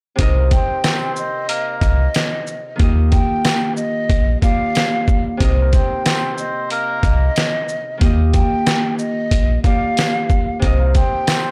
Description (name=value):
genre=hip hop, boom-bap hip-hop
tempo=92 BPM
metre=4/4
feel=swing 55% on 16ths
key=C minor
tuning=A4 = 442 Hz
part: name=Celtic harp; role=accompaniment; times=0.2-11.5 s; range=C3 to Eb5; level=-26 LUFS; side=equal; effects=cassette tape, high-pass filter, low-pass filter
part: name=sub bass with octave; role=bass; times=0.2-11.0 s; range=Bb1 to Eb2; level=-18 LUFS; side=equal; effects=none
part: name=trip hop sampler-style drum kit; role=drums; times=0.2-11.4 s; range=hi-hat, kick drum, shaker, snare drum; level=-20 LUFS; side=equal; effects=vintage 12-bit sampler grit
part: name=muted trumpet section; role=stabs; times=0.4-11.5 s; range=Bb3 to C5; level=-28 LUFS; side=equal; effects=high-pass filter, low-pass filter, analog delay
part: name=breathy concert flute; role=melody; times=0.5-11.5 s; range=Eb5 to G5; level=-25 LUFS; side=equal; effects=high-pass filter, low-pass filter
part: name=tambourine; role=percussion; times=0.8-11.4 s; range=none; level=-36 LUFS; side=equal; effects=none
room=little or no reverb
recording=dry, gritty hardware recording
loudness=-17 LUFS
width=mono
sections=0.2-11.5 A section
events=none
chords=0.2 Cm7; 2.8 Ebmaj9; 5.4 Cm7; 8.0 Ebmaj9; 10.6 Cm7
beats=| 0.19 0.84 1.49 2.14 | 2.80 3.45 4.10 4.75 | 5.40 6.06 6.71 7.36 | 8.01 8.66 9.32 9.97 | 10.62 11.27